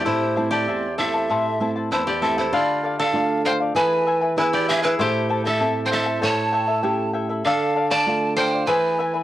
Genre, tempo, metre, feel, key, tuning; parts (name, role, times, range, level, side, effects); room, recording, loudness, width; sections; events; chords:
andean folk, Andean ensemble; 97 BPM; 2/4; straight; A minor; A4 = 440 Hz
koto; melody; 0.0-9.2 s; E4 to D5; -24 LUFS; equal; cassette tape
breathy pan flute; second line; 0.0-9.2 s; B4 to A5; -25 LUFS; right 2 dB; cassette tape
charango; accompaniment; 0.0-9.2 s; E4 to A5; -25 LUFS; left 4 dB; cassette tape
nylon-string guitar; accompaniment; 0.0-9.2 s; E2 to G#4; -26 LUFS; right 2 dB; cassette tape
light reverb; home recording on cassette; -19 LUFS; side -13 dB against mid
0.0-2.5 A section; 2.5-9.2 B section
0.0 Am; 2.5 Dm; 3.8 E; 5.0 Am; 6.2 A7; 7.4 Dm; 8.7 E